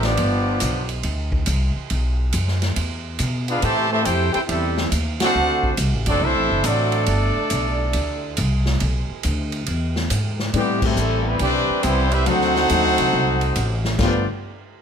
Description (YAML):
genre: jazz, big band swing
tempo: 139 BPM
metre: 4/4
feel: swing 66% on 8ths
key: G major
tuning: A4 = 440 Hz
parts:
  - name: clear trumpet section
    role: melody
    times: 0.0-0.9, 3.5-14.3 s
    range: G3 to A5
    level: -22 LUFS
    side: equal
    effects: none
  - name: bright trombone section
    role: second line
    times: 0.0-0.9, 3.5-14.3 s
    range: G2 to G4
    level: -25 LUFS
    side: right 2 dB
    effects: none
  - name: upright bass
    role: bass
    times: 0.0-14.3 s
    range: F#1 to B2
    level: -22 LUFS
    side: equal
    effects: none
  - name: swinging big-band drum kit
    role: drums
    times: 0.0-14.1 s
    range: crash cymbal, hi-hat, kick drum, ride cymbal, snare drum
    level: -27 LUFS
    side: right 1 dB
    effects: none
  - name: warm grand piano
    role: accompaniment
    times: 10.5-14.3 s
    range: D3 to B4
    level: -26 LUFS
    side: left 9 dB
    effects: none
room: light reverb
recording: none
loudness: -18 LUFS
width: side -7 dB against mid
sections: 0.0-10.5 A section; 10.5-14.0 B section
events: band accent 5.1, 10.8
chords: 0.2 G7; 1.9 B5; 2.8 E7(no3); 3.6 Am7; 5.4 D7; 7.1 G; 8.8 Bm; 9.7 E; 10.5 Am9; 12.3 D7b9; 14.0 G9